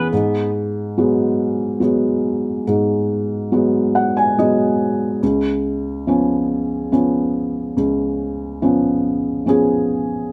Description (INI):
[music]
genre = acoustic folk-pop ballad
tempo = 71 BPM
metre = 3/4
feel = straight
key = G# minor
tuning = A4 = 440 Hz
[part]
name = felt-muted upright piano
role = melody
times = 0.0-10.3 s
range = C#2 to G#5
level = -19 LUFS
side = equal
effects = none
[part]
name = picked steel-string acoustic guitar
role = arpeggios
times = 0.0-0.5 s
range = B3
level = -34 LUFS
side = equal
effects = none
[sound]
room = light reverb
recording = none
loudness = -19 LUFS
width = mono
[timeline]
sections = 0.1-10.3 A section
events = felt piano fill 3.5-5.2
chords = 0.1 G#m7; 5.2 C#7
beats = | 0.12 0.97 1.82 | 2.67 3.52 4.37 | 5.22 6.07 6.91 | 7.76 8.61 9.47